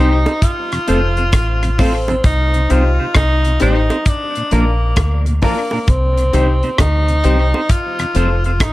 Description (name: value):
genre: roots reggae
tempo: 66 BPM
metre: 4/4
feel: swing 65% on 16ths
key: C dorian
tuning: A4 = 437 Hz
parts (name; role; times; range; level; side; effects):
- clear tenor saxophone; melody; 0.0-8.7 s; Bb3 to F4; -20 LUFS; equal; tape echo
- clean electric guitar; accompaniment; 0.0-8.5 s; Bb3 to C5; -25 LUFS; right 4 dB; tape echo
- mellow tonewheel organ; accompaniment; 0.0-8.3 s; F2 to F4; -26 LUFS; left 1 dB; overdrive, chorus vibrato, slow rotary speaker, dub echo
- bright grand piano; stabs; 0.0-8.3 s; D4 to C5; -22 LUFS; left 5 dB; none
- deep dub fingered electric bass; bass; 0.0-8.7 s; F1 to D2; -15 LUFS; equal; none
- damped 70s drum kit; drums; 0.3-8.7 s; hi-hat, kick drum, rim click; -17 LUFS; equal; none
- bongos; percussion; 0.3-8.7 s; none; -26 LUFS; right 2 dB; none
room: light reverb, small room ambience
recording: none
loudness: -13 LUFS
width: side -17 dB against mid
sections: 0.0-8.7 A section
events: none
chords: 0.4 F; 2.2 Cm; 4.1 Bb; 5.9 Cm; 7.7 F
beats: 0.42 1.33 | 2.24 3.15 4.06 4.97 | 5.88 6.79 7.70 8.61